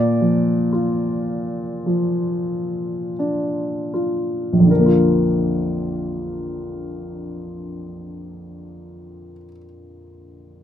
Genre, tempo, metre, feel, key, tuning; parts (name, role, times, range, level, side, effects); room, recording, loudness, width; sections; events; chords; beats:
classical, lyrical solo piano; 38-61 BPM; 4/4; rubato; Bb major; A4 = 439 Hz
warm upright piano; solo; 0.0-10.6 s; Bb1 to D5; -19 LUFS; equal
little or no reverb; close, detailed microphones; -18 LUFS; side -10 dB against mid
0.0-4.7 A section; 4.7-10.6 B section
slowing down 0.0-4.7
0.0 Bb
0.71 1.85 3.19 | 4.70 6.21 7.67 9.13